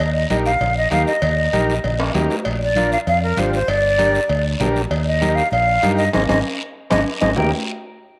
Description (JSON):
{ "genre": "latin, cumbia", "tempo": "195 BPM", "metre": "4/4", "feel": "straight", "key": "Eb major", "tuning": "A4 = 440 Hz", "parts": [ { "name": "breathy hollow jazz flute", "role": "melody", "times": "0.0-7.5 s", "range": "Bb4 to G5", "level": "-22 LUFS", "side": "equal", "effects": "none" }, { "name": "fingered electric bass", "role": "bass", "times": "0.0-7.5 s", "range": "G1 to G2", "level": "-24 LUFS", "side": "equal", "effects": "none" }, { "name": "congas", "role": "percussion", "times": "0.0-7.4 s", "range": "none", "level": "-29 LUFS", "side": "equal", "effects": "none" }, { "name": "cowbell and timbales", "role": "percussion", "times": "0.0-7.4 s", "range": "none", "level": "-28 LUFS", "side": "equal", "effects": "none" }, { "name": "guiro", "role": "percussion", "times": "0.0-7.4 s", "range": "none", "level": "-34 LUFS", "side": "equal", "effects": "none" }, { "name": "combo organ", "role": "accompaniment", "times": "0.3-7.5 s", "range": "C4 to Bb4", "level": "-26 LUFS", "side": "equal", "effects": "none" } ], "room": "moderate spring reverb, RT60 1.3 s, small room ambience", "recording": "none", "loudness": "-18 LUFS", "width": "mono", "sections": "0.0-2.5 A section; 2.5-7.4 B section", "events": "drum fill 2.0-2.5, 6.4-7.4; band accent 6.1-7.4", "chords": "0.0 Eb; 2.5 Bb; 3.7 Gm; 4.9 Eb; 6.1 Ab; 7.4 Eb" }